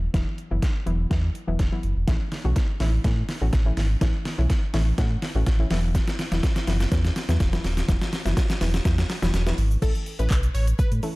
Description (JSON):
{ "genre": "dance-pop", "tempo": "124 BPM", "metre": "4/4", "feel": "straight", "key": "A major", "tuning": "A4 = 440 Hz", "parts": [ { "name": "soft round pluck", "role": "accompaniment", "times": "0.0-11.2 s", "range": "E3 to B4", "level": "-31 LUFS", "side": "left 1 dB", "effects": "chorus, sidechain pumping" }, { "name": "sub bass with octave", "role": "bass", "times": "0.0-11.0 s", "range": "D#1 to A2", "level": "-23 LUFS", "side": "equal", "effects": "sidechain pumping" }, { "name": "deep house drum kit", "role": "drums", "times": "0.1-11.1 s", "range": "crash cymbal, handclaps, hi-hat, kick drum, shaker, snare drum", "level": "-24 LUFS", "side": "equal", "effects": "overdrive" }, { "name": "plucky unison lead", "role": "melody", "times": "9.8-10.9 s", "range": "A4 to C#5", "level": "-35 LUFS", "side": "left 3 dB", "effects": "phaser, sidechain pumping, digital delay" } ], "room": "digital ambience", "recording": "dark, warm production", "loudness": "-21 LUFS", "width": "side -22 dB against mid", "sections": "0.0-9.8 A section; 9.8-11.2 B section", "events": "build-up 0.0-9.8; drum fill 0.0-9.8; drop 9.8-11.2", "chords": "0.0 Esus2; 2.1 A; 5.7 Esus2; 9.8 A" }